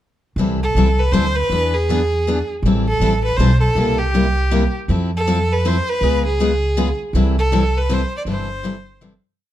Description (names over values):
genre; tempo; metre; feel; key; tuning
acoustic string swing (jazz manouche); 160 BPM; 3/4; swing 62% on 8ths; C major; A4 = 440 Hz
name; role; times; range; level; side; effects
picked steel-string acoustic guitar; accompaniment; 0.4-9.1 s; C3 to A4; -20 LUFS; left 2 dB; none
upright bass; bass; 0.4-9.2 s; G1 to F2; -19 LUFS; right 1 dB; none
clear violin; melody; 0.6-9.0 s; G4 to D5; -21 LUFS; right 1 dB; slapback echo
room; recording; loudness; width
light reverb; dark, warm production; -15 LUFS; side -12 dB against mid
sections
0.4-9.4 A section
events
fade-out 7.6-9.4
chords
0.4 C69; 1.5 E7; 2.6 Am7; 3.8 C7; 4.9 Fmaj7; 6.0 Db7; 7.1 C6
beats
| 0.38 0.75 1.13 | 1.51 1.88 2.26 | 2.63 3.01 3.38 | 3.76 4.13 4.51 | 4.88 5.26 5.63 | 6.01 6.38 6.76 | 7.13 7.51 7.88 | 8.26 8.63 9.01